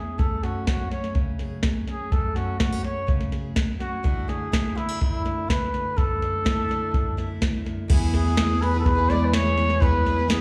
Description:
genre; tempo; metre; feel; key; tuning
indie folk with a building arrangement; 124 BPM; 4/4; straight; E mixolydian; A4 = 439 Hz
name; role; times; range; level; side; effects
mellow trumpet; melody; 0.0-10.4 s; E4 to D5; -29 LUFS; equal; slapback echo
fingerpicked steel-string acoustic guitar; accompaniment; 0.0-10.4 s; E2 to G#4; -32 LUFS; equal; none
soft vintage rhythm box; drums; 0.2-10.4 s; crash cymbal, kick drum, snare drum; -26 LUFS; equal; none
picked plugged-in twelve-string acoustic guitar; accompaniment; 7.9-10.4 s; E3 to G#4; -35 LUFS; equal; slapback echo
fingered electric bass; bass; 7.9-10.4 s; E2; -26 LUFS; equal; none
room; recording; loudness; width
light reverb, small room ambience; live gig heard through the venue's PA, club reverb; -24 LUFS; mono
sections
0.0-7.9 A section; 7.9-10.4 B section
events
none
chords
0.2 F#madd9; 4.0 Dadd9/F#; 7.9 E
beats
| 0.19 0.67 1.16 1.64 | 2.12 2.60 3.08 3.57 | 4.05 4.53 5.01 5.50 | 5.98 6.46 6.94 7.42 | 7.90 8.38 8.86 9.34 | 9.82 10.29

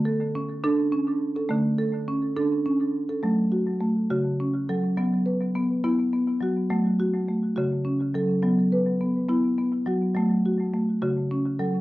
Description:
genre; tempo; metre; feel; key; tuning
world meditative, meditative tuned percussion; 69 BPM (dotted quarters); 6/8; straight; F# minor; A4 = 440 Hz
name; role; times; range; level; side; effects
marimba with medium mallets; solo; 0.0-11.8 s; C#3 to B4; -22 LUFS; equal; cassette tape, analog delay
room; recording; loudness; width
wet small room reverb, RT60 0.6 s; home recording on cassette; -22 LUFS; side -17 dB against mid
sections
0.0-3.2 A section; 3.2-11.8 B section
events
none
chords
0.0 D5; 3.2 F#m; 5.0 E5/F#; 6.7 F#m; 8.4 E5/F#; 10.2 F#m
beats
0.64 | 1.50 2.37 | 3.23 4.10 | 4.96 5.83 | 6.70 7.56 | 8.43 9.29 | 10.16 11.03

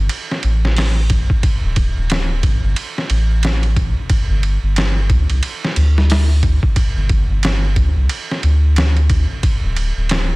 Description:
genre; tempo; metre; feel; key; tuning
trip hop; 90 BPM; 4/4; swing 60% on 16ths; unclear; A4 = 441 Hz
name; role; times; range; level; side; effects
soft dub sub bass; bass; 0.0-10.4 s; D1 to D2; -15 LUFS; equal; tube saturation
trip hop sampler-style drum kit; drums; 0.1-10.3 s; hi-hat, kick drum, ride cymbal, snare drum; -18 LUFS; equal; small room ambience
room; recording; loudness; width
little or no reverb; dense, heavily limited modern master; -14 LUFS; side -23 dB against mid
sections
0.0-10.4 A section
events
none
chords
none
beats
0.10 0.77 | 1.43 2.10 2.77 3.43 | 4.10 4.76 5.43 6.10 | 6.76 7.43 8.10 8.77 | 9.43 10.10

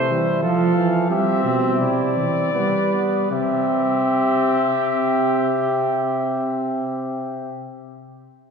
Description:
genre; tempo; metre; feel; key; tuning
classical, imitative canzona for brass ensemble; 75-93 BPM; 3/4; straight; C major; A4 = 440 Hz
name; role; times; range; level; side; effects
dark trumpet; melody; 0.0-7.6 s; D5 to F5; -24 LUFS; left 6 dB; none
mellow trumpet; second line; 0.0-7.6 s; E4 to C5; -26 LUFS; right 1 dB; none
clear trombone; accompaniment; 0.0-7.6 s; E3 to C4; -24 LUFS; right 3 dB; none
mellow tuba; bass; 0.0-7.6 s; B2 to G3; -23 LUFS; right 1 dB; none
room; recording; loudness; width
wet church reverb, RT60 3.0 s; heard from further back in the room; -18 LUFS; side -6 dB against mid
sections
0.0-3.3 A section; 3.3-8.1 B section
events
slowing down 0.0-3.3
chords
0.4 F; 1.1 C; 2.5 G; 3.3 C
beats
0.43 | 1.10 1.80 2.54 | 3.31 4.11 4.91 | 5.71 6.51 7.31

